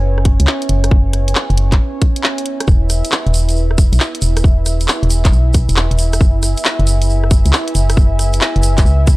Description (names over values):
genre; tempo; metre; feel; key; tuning
UK garage, two-step garage; 136 BPM; 4/4; swing 66% on 16ths; unclear; A4 = 436 Hz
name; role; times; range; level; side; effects
warm analog pad; sustained chords; 0.0-9.2 s; C#4 to E5; -24 LUFS; right 1 dB; chorus, sidechain pumping
organ-like FM bass; bass; 0.0-9.2 s; E1 to C#2; -13 LUFS; equal; none
deep dark ambient pad; texture; 0.0-9.2 s; B4 to G#5; -28 LUFS; right 1 dB; chorus, built-in reverb, sidechain pumping
garage drum kit; drums; 0.2-9.2 s; handclaps, hi-hat, rim click; -19 LUFS; equal; none
electronic kick drum; drums; 0.3-9.2 s; none; -12 LUFS; equal; none
tube shaker; percussion; 2.7-9.2 s; none; -26 LUFS; right 2 dB; none
room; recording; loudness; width
little or no reverb; dry, gritty hardware recording, transformer saturation, cassette tape; -11 LUFS; side -20 dB against mid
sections
0.0-9.2 A section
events
break 2.2-2.7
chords
0.0 F#5; 2.7 E; 6.2 F#5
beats
0.03 0.47 | 0.91 1.35 1.80 2.24 | 2.68 3.12 3.56 4.00 | 4.44 4.88 5.33 5.77 | 6.21 6.65 7.09 7.53 | 7.97 8.41 8.86